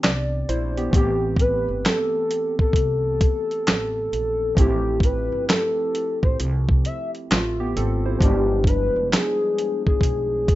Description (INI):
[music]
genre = lo-fi hip hop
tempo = 66 BPM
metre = 4/4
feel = swing 63% on 16ths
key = unclear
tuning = A4 = 440 Hz
[part]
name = warm analog keys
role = accompaniment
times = 0.0-10.6 s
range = E3 to D5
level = -28 LUFS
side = right 1 dB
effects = chorus, cassette tape, plate reverb
[part]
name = upright bass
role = bass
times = 0.0-10.4 s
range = F1 to C2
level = -26 LUFS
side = equal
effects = none
[part]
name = dusty soul sampler-style drum kit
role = drums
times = 0.0-10.6 s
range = handclaps, hi-hat, kick drum, snare drum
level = -19 LUFS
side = equal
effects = none
[part]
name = warbly nostalgic lead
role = melody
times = 0.9-10.6 s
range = G4 to E5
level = -23 LUFS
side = left 1 dB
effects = chorus, plate reverb
[sound]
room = moderate studio reverb, RT60 0.6 s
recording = rough home demo mix, nothing above 7.7 kHz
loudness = -19 LUFS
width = side -16 dB against mid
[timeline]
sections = 0.0-10.6 A section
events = break 0.0-0.9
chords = 0.0 Cmaj9; 0.9 Am9; 4.6 G13sus4; 8.2 G7b9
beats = 0.02 | 0.93 1.84 2.75 3.66 | 4.57 5.48 6.39 7.30 | 8.21 9.12 10.02